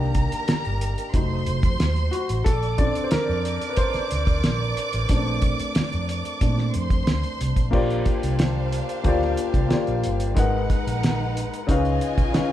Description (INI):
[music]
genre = lush 1970s-style soul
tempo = 91 BPM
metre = 4/4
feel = straight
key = Bb major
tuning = A4 = 440 Hz
[part]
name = warm studio violin section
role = second line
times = 0.0-12.5 s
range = D4 to D6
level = -30 LUFS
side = right 2 dB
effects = none
[part]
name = warm baby grand piano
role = accompaniment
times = 0.0-12.5 s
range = Db3 to Gb5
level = -26 LUFS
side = left 2 dB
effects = none
[part]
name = vintage muted fingered electric bass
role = bass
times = 0.0-12.3 s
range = F1 to Bb2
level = -26 LUFS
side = right 1 dB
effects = none
[part]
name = cloth-damped thuddy drum kit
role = drums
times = 0.1-12.5 s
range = crash cymbal, hi-hat, kick drum, snare drum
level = -23 LUFS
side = equal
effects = none
[sound]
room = moderate large studio reverb, RT60 0.8 s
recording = band playing live in one room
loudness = -20 LUFS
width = side -12 dB against mid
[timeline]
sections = 0.0-7.7 A section; 7.7-12.5 B section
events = grand piano solo 0.0-7.7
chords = 0.0 Cm7; 1.1 F7b9; 2.5 Bbmaj9; 7.7 Bb69; 10.4 Abm9; 11.7 Db9